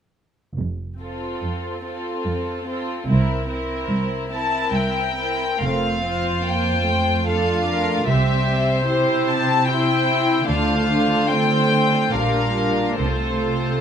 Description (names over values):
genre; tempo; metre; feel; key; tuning
classical, slow romantic movement for string orchestra; 73 BPM; 3/4; uneven beats, rubato; F major; A4 = 440 Hz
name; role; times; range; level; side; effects
dark studio cello section; bass; 0.6-13.8 s; C2 to D3; -25 LUFS; right 2 dB; none
warm studio double bass section; bass; 0.6-13.8 s; F1 to D2; -25 LUFS; right 2 dB; none
warm studio violin section; melody; 1.0-13.8 s; A4 to A5; -23 LUFS; left 3 dB; none
rich studio violin section; second line; 1.0-13.8 s; E4 to C5; -25 LUFS; equal; none
dark studio viola section; accompaniment; 1.0-13.8 s; G3 to E4; -24 LUFS; right 1 dB; none
room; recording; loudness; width
light reverb; close, detailed microphones; -18 LUFS; side -8 dB against mid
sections
0.6-5.6 A section; 5.6-13.8 B section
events
none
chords
0.6 F; 3.1 C7; 5.6 F; 8.1 C; 10.5 Dm7; 12.1 Gm7/Bb; 13.0 F/C